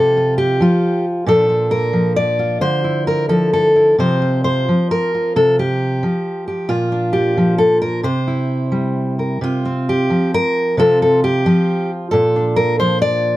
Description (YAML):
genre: folk, solo fingerstyle acoustic guitar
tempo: 133 BPM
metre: 3/4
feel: rubato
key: C mixolydian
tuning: A4 = 440 Hz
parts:
  - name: fingerpicked steel-string acoustic guitar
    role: solo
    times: 0.0-13.4 s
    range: Bb2 to D5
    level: -14 LUFS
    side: equal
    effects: none
room: light reverb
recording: dark, warm production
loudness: -14 LUFS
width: side -16 dB against mid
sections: 0.0-9.4 A section; 9.4-13.4 A section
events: none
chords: 0.0 Csus4; 1.3 Bb; 2.6 Dmadd9; 4.0 Csus4; 5.3 Fsus2/C; 6.7 Bb; 8.0 C7; 9.4 Csus4; 12.1 Bb